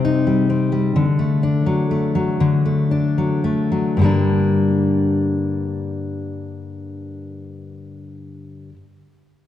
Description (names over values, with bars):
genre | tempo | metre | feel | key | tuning
pop | 36-45 BPM (dotted quarters) | 6/8 | straight | G harmonic minor | A4 = 438 Hz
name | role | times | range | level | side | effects
fingerpicked steel-string acoustic guitar | accompaniment | 0.0-8.8 s | G2 to Eb4 | -18 LUFS | left 2 dB | none
room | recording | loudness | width
moderate concert hall reverb, RT60 1.9 s | dark, warm production | -16 LUFS | side -11 dB against mid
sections
0.0-4.0 A section; 4.0-7.3 B section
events
slowing down 0.0-4.0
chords
0.0 Cm; 1.0 D; 4.0 Gm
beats
| 0.95 2.40 | 3.99 5.66